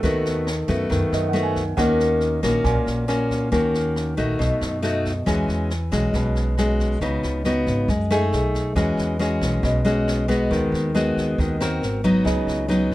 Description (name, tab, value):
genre	bossa nova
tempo	137 BPM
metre	4/4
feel	straight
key	unclear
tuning	A4 = 444 Hz
part	nylon-string guitar	accompaniment	0.0-12.9 s	A#2 to A#4	-21 LUFS	left 1 dB	none
part	warm baby grand piano	accompaniment	0.0-4.4, 12.2-12.9 s	A4 to G#5	-30 LUFS	right 6 dB	none
part	upright bass	bass	0.0-12.9 s	G#1 to F#2	-26 LUFS	right 1 dB	none
part	jazz brush drum kit	drums	0.0-12.9 s	kick drum, rim click, snare drum	-30 LUFS	equal	none
room	little or no reverb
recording	close, detailed microphones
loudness	-19 LUFS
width	side -16 dB against mid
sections	0.0-5.3 A section; 5.3-12.9 B section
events	none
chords	0.0 B7/D#; 1.8 D#m7; 4.4 B7; 5.3 E69; 7.0 C#9sus4; 8.3 B6; 8.8 E69; 10.5 G#m7/D#; 11.8 G#9; 12.3 C#9sus4